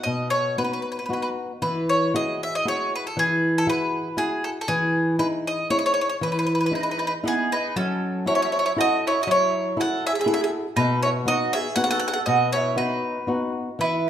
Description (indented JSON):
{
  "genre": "italian folk, Italian serenade",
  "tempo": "118 BPM",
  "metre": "3/4",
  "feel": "swing 53% on 8ths, rubato",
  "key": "E major",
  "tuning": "A4 = 440 Hz",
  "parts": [
    { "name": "bowl-back mandolin", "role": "melody", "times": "0.0-14.1 s", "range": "G#4 to F#5", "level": "-24 LUFS", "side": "equal", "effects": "none" },
    { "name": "flamenco guitar", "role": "accompaniment", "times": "0.1-14.1 s", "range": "B2 to A4", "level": "-25 LUFS", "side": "left 1 dB", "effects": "none" },
    { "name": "mandolin", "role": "second line", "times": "6.7-14.1 s", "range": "B3 to B4", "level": "-26 LUFS", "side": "right 5 dB", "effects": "none" }
  ],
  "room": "wet recital hall reverb, RT60 1.5 s",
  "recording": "minimal, uncompressed stereo recording",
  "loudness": "-21 LUFS",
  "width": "side -10 dB against mid",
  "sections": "0.0-14.1 A section",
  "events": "none",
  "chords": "0.0 B; 1.6 Eadd9; 4.7 Emaj7; 7.8 F#m7; 10.8 B"
}